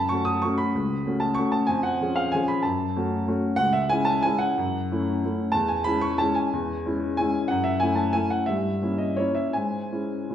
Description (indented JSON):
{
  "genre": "classical, piano waltz",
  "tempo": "156-198 BPM",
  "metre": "3/4",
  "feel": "rubato",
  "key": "C# minor",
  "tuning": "A4 = 440 Hz",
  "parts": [
    { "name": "warm baby grand piano", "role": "solo", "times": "0.0-10.3 s", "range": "C#2 to D#6", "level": "-22 LUFS", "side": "equal", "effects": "none" }
  ],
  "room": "wet recital hall reverb, RT60 1.3 s",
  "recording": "heard from further back in the room",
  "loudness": "-22 LUFS",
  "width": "side -10 dB against mid",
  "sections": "0.0-10.3 A section",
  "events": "none",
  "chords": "0.0 F#m; 1.7 C#/E#; 2.7 F#m; 3.6 C#m; 4.6 F#m7; 5.5 C#m/E; 7.5 F#m7; 8.5 Gdim7; 9.6 C#m/G#",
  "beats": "0.11 0.43 | 0.74 1.05 1.36 | 1.68 2.00 2.34 | 2.65 2.96 3.28 | 3.59 3.91 4.25 | 4.57 4.89 5.23 | 5.54 5.86 6.19 | 6.52 6.84 7.18 | 7.50 7.82 8.16 | 8.48 8.81 9.18 | 9.56 9.93 10.31"
}